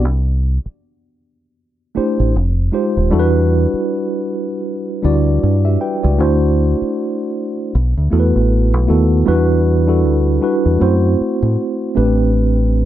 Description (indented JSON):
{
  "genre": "R&B",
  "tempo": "78 BPM",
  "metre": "4/4",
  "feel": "swing 58% on 16ths",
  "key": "E minor",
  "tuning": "A4 = 438 Hz",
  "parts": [
    { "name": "mellow tine electric piano", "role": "accompaniment", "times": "0.0-12.9 s", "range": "G3 to G5", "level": "-16 LUFS", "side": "right 1 dB", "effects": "medium stereo tremolo, plate reverb" },
    { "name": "deep dub fingered electric bass", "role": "bass", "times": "0.0-12.9 s", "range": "Eb1 to A2", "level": "-14 LUFS", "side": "equal", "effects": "none" }
  ],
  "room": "moderate studio reverb, RT60 0.6 s",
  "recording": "dark, warm production",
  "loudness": "-13 LUFS",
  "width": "side -12 dB against mid",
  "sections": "0.0-9.3 A section; 9.3-12.9 B section",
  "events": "none",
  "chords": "0.0 C69; 2.3 Fm9; 3.1 Em9; 6.2 D9; 7.7 B7sus4; 9.3 Em9; 10.8 F#m7b5; 11.9 Am11"
}